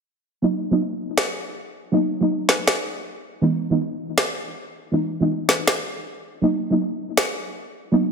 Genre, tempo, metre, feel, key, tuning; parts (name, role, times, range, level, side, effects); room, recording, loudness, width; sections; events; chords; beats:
future bass; 160 BPM; 4/4; swing 54% on 16ths, half-time; A4 = 439 Hz
soft round pluck; accompaniment; 0.4-8.1 s; E3 to D#4; -21 LUFS; right 1 dB; lush chorus, ping-pong delay
electronic snare drum; drums; 1.2-7.3 s; -21 LUFS; left 1 dB; studio reverb
moderate lush hall reverb, RT60 1.8 s; dense, heavily limited modern master; -20 LUFS; side -5 dB against mid
0.4-8.1 A section
0.4 F#add11; 3.2 Emaj7; 6.4 F#add11
| 0.43 0.80 1.18 1.55 | 1.93 2.30 2.68 3.05 | 3.43 3.80 4.18 4.55 | 4.93 5.30 5.68 6.05 | 6.43 6.80 7.18 7.55 | 7.93